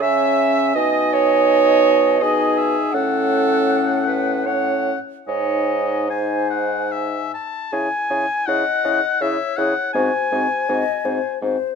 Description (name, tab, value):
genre	classical, slow romantic movement for wind quintet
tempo	72-84 BPM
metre	3/4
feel	rubato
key	C# minor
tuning	A4 = 440 Hz
part	mellow hollow silver concert flute	melody	0.0-11.8 s	B#4 to G#5	-24 LUFS	left 12 dB	none
part	bright oboe	second line	0.0-11.4 s	D#5 to A5	-23 LUFS	left 4 dB	none
part	mellow French horn	accompaniment	0.0-11.6 s	B#3 to E4	-26 LUFS	left 4 dB	none
part	warm clarinet	accompaniment	0.0-11.6 s	F#4 to E5	-20 LUFS	right 9 dB	none
part	warm bassoon	bass	0.0-11.6 s	G#2 to C#3	-24 LUFS	right 2 dB	none
room	moderate large studio reverb, RT60 1.3 s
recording	minimal, uncompressed stereo recording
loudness	-16 LUFS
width	side -6 dB against mid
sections	0.0-7.7 A section; 7.7-11.8 B section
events	none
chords	0.0 C#m; 0.8 G#m/B; 2.9 F#m/A; 5.3 G#; 7.7 C#m; 9.9 G#7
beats	0.02 | 0.75 1.49 2.21 | 2.94 3.70 4.47 | 5.29 6.11 6.92 | 7.72 8.47 9.21 | 9.94 10.68 11.41